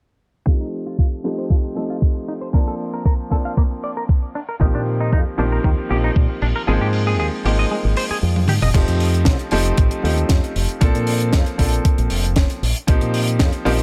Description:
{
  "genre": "nu-disco, nu disco",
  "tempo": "116 BPM",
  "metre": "4/4",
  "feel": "straight",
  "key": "F mixolydian",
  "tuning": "A4 = 440 Hz",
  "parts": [
    { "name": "bright grand piano", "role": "accompaniment", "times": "0.5-13.8 s", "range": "Eb3 to A5", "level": "-26 LUFS", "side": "equal", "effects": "sidechain pumping, low-pass filter, tape echo" },
    { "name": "direct-recorded clean electric guitar", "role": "riff", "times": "0.5-8.7 s", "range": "Eb3 to F5", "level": "-30 LUFS", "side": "equal", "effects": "lush chorus, low-pass filter, tape echo" },
    { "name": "electronic kick drum", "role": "drums", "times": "0.5-13.5 s", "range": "none", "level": "-19 LUFS", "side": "equal", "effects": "none" },
    { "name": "tight funk drum kit", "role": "drums", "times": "0.7-13.8 s", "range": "crash cymbal, hi-hat, snare drum, toms", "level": "-28 LUFS", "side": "equal", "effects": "none" },
    { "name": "fingered electric bass with an envelope filter", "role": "bass", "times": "4.6-13.8 s", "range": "F1 to Bb2", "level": "-22 LUFS", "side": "equal", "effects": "none" }
  ],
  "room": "small room reverb",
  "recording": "low-pass filter",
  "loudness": "-19 LUFS",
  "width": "mono",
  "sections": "0.5-8.7 A section; 8.7-13.8 B section",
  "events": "filter sweep on clean electric guitar 0.5-8.7; filter sweep on grand piano 0.5-8.7; filter sweep 0.5-8.7; kick drops out 6.7-8.7; drum fill 8.4-8.7",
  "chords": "0.5 F9; 2.5 Bbmaj9; 4.3 Eb69/Bb; 6.7 Ab69; 8.7 F9; 10.8 Bbmaj9; 12.6 Eb69/Bb"
}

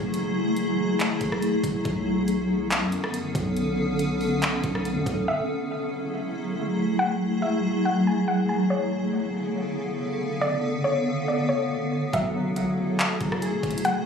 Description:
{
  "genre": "hip hop, atmospheric cloud-rap",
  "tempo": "140 BPM",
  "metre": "4/4",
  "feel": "half-time",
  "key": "F# minor",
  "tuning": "A4 = 440 Hz",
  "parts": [
    { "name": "granular cloud pad", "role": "sustained chords", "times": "0.0-14.1 s", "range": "C#3 to A4", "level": "-25 LUFS", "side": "equal", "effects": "built-in reverb, sidechain pumping" },
    { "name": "long sustained 808-style bass", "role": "bass", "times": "0.0-5.3, 12.1-14.1 s", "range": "F#1 to F#2", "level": "-31 LUFS", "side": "equal", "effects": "none" },
    { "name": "trap drum kit", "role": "drums", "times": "0.1-5.2, 12.1-13.9 s", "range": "handclaps, hi-hat, kick drum, rim click", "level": "-28 LUFS", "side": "equal", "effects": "none" },
    { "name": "soft round pluck", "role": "melody", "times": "5.3-14.1 s", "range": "C#5 to G#5", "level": "-29 LUFS", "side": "left 1 dB", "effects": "chorus, tape echo" },
    { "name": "mellow electric guitar", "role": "arpeggios", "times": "12.1-14.1 s", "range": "F#3 to G#4", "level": "-28 LUFS", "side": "left 1 dB", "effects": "tape echo" }
  ],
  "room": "light reverb",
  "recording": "recorded on a phone in the room, studio reverb, compression",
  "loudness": "-23 LUFS",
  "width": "side -6 dB against mid",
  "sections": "0.0-5.3 A section; 5.3-14.1 B section",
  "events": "none",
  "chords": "0.0 F#m9; 1.9 Bm9; 5.3 F#m9; 8.7 Bm9; 12.1 F#m9"
}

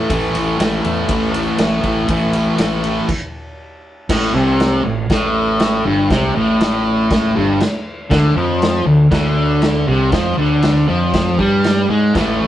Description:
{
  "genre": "garage rock duo or trio",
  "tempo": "120 BPM",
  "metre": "4/4",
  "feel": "straight",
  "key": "unclear",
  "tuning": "A4 = 443 Hz",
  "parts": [
    { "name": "fuzz guitar", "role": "riff", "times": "0.0-12.5 s", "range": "G2 to A3", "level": "-15 LUFS", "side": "equal", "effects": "distortion" },
    { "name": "growling fingered electric bass", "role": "bass", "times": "0.1-12.5 s", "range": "G1 to G#2", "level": "-20 LUFS", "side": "equal", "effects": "overdrive, tube saturation" },
    { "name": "vintage drum kit", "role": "drums", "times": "0.1-12.3 s", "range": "crash cymbal, kick drum, ride cymbal, snare drum", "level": "-21 LUFS", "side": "equal", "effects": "none" }
  ],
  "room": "moderate studio reverb, RT60 0.6 s",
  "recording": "rough rehearsal-room recording, nothing above 10.9 kHz",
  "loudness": "-13 LUFS",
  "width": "side -12 dB against mid",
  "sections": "0.0-4.1 A section; 4.1-12.2 B section",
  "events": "stop 3.1-4.1",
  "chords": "0.0 A5; 4.1 Gsus24; 8.1 Csus4 (rootless)"
}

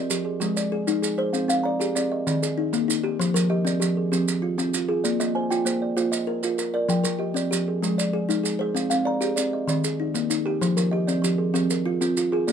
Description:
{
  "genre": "southern african traditional, mbira-style interlocking cycle",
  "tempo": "129 BPM (dotted quarters)",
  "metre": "12/8",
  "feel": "straight",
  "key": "F dorian",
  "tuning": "A4 = 443 Hz",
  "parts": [
    { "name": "kalimba", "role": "arpeggios", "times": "0.0-12.5 s", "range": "Eb3 to F5", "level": "-24 LUFS", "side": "left 2 dB", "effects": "none" },
    { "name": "kalimba", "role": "arpeggios", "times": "0.0-12.5 s", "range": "Eb3 to Bb5", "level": "-26 LUFS", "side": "right 4 dB", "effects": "none" },
    { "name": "maracas", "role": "percussion", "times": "0.1-12.5 s", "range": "none", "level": "-30 LUFS", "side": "right 7 dB", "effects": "none" }
  ],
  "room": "moderate small room ambience, RT60 0.5 s",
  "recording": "none",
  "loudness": "-22 LUFS",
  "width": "side -8 dB against mid",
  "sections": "0.0-12.5 A section",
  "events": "none",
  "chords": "0.4 Ab; 1.3 Cm; 2.3 Eb; 3.2 Fm; 5.0 Bb; 6.9 Fm; 7.8 Ab; 8.8 Cm; 9.7 Eb; 10.6 Fm"
}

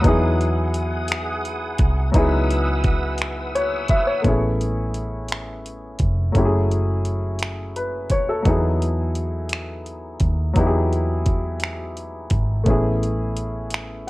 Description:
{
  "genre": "slow six-eight R&B",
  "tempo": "57 BPM (dotted quarters)",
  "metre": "6/8",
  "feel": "straight",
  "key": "E major",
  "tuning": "A4 = 441 Hz",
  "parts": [
    { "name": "warm baby grand piano", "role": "accompaniment", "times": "0.0-14.1 s", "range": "F#3 to E5", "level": "-24 LUFS", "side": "left 1 dB", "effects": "none" },
    { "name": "bright tonewheel organ", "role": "sustained chords", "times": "0.0-4.2 s", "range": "G#4 to E6", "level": "-28 LUFS", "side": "right 1 dB", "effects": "chorus vibrato, slow rotary speaker" },
    { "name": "vintage muted fingered electric bass", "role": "bass", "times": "0.0-14.1 s", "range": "D#1 to E2", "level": "-23 LUFS", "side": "equal", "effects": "none" },
    { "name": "smooth R&B drum kit", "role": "drums", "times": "0.0-13.9 s", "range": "finger snaps, hi-hat, kick drum", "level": "-22 LUFS", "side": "equal", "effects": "none" }
  ],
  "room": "light reverb",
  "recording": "worn, warbling old tape, cassette tape, warbly pitch drift",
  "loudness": "-19 LUFS",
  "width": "side -19 dB against mid",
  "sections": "0.0-4.2 A section; 4.2-14.1 B section",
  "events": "none",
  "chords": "0.0 Emaj9; 2.1 C#m11; 4.2 Amaj9; 6.4 F#m9; 8.5 Emaj9; 12.7 Amaj9"
}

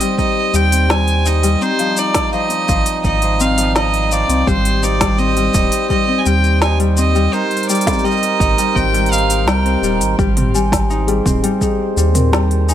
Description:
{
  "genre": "folktronica",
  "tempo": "84 BPM",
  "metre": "4/4",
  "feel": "straight",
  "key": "unclear",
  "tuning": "A4 = 440 Hz",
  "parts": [
    { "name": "bright violin", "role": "melody", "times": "0.0-10.0 s", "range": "C5 to Ab5", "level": "-19 LUFS", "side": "right 2 dB", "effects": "ping-pong delay" },
    { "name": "mellow accordion", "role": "sustained chords", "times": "0.0-12.7 s", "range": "G3 to C5", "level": "-24 LUFS", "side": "right 5 dB", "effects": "none" },
    { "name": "Celtic harp", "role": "arpeggios", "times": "0.0-12.7 s", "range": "F3 to Eb4", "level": "-18 LUFS", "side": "left 4 dB", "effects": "low-pass filter, ping-pong delay" },
    { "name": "organic electronic drum kit", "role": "drums", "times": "0.0-12.7 s", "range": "hi-hat, shaker, snare drum, toms", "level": "-21 LUFS", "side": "equal", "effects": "overdrive, studio reverb" },
    { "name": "electronic kick drum", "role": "drums", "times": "0.2-11.8 s", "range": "none", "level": "-20 LUFS", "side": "right 1 dB", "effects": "overdrive, studio reverb" },
    { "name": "round analog bass", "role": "bass", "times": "0.5-12.7 s", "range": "Eb1 to Eb2", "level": "-17 LUFS", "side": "right 1 dB", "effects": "none" },
    { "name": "worn celesta", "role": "second line", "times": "10.5-12.7 s", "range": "Ab4 to Ab5", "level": "-22 LUFS", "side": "left 2 dB", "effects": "tape echo" }
  ],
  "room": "small room ambience",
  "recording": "none",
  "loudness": "-13 LUFS",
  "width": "side -10 dB against mid",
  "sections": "0.0-12.7 A section",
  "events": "none",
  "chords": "0.0 Abmaj7; 1.6 Fm7; 4.5 Abmaj7; 7.3 Cm7/Ab"
}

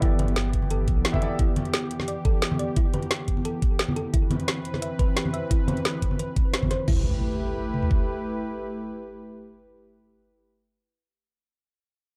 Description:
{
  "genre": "liquid drum and bass",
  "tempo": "175 BPM",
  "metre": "4/4",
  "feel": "straight",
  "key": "unclear",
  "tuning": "A4 = 440 Hz",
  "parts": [
    { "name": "warm grand piano", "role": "accompaniment", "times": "0.0-1.4 s", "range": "B3 to E5", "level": "-35 LUFS", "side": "equal", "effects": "delay" },
    { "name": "warm analog pad", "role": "sustained chords", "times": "0.0-10.4 s", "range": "E3 to B4", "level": "-34 LUFS", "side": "equal", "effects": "chorus, sidechain pumping" },
    { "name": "thumb-piano-like synth pluck", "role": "arpeggios", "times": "0.0-7.0 s", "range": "E4 to E5", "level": "-38 LUFS", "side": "equal", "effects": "chorus, digital delay" },
    { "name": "warm sub bass", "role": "bass", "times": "0.0-1.0 s", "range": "G1 to B1", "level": "-28 LUFS", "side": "equal", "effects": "none" },
    { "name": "garage drum kit", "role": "drums", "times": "0.0-8.0 s", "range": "kick drum, toms", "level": "-26 LUFS", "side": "equal", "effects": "none" },
    { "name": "garage drum kit", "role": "drums", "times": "0.0-6.9 s", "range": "crash cymbal, hi-hat, snare drum", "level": "-31 LUFS", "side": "equal", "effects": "none" },
    { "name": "congas", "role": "percussion", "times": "0.2-6.7 s", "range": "none", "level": "-34 LUFS", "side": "equal", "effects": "none" },
    { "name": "impact", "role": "sound effects", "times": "6.9-10.8 s", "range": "none", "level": "-32 LUFS", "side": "equal", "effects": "none" }
  ],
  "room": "little or no reverb",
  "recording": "dark, warm production",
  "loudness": "-25 LUFS",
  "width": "mono",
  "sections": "0.0-6.9 A section; 6.9-9.6 B section",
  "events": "none",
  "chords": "0.0 G69; 4.1 Cmaj7; 6.9 G69"
}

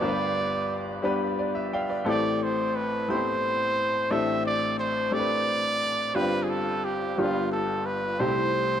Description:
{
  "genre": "gospel",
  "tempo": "59 BPM (dotted quarters)",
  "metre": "6/8",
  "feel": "straight",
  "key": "unclear",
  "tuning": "A4 = 440 Hz",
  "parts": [
    { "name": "clear trumpet", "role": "melody", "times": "0.0-8.8 s", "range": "F4 to E5", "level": "-27 LUFS", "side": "right 2 dB", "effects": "tape echo" },
    { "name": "bright upright piano", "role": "accompaniment", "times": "0.0-8.8 s", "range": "G1 to B5", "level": "-27 LUFS", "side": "left 2 dB", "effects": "none" }
  ],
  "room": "moderate echo chamber reverb, RT60 1.8 s",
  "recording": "none",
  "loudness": "-24 LUFS",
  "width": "side -9 dB against mid",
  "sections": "0.0-8.8 A section",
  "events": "upright piano fill 1.0-2.1",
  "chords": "0.0 G; 2.1 Am7; 4.1 D7sus4/A; 6.2 G7sus4; 7.2 G7; 8.2 C6"
}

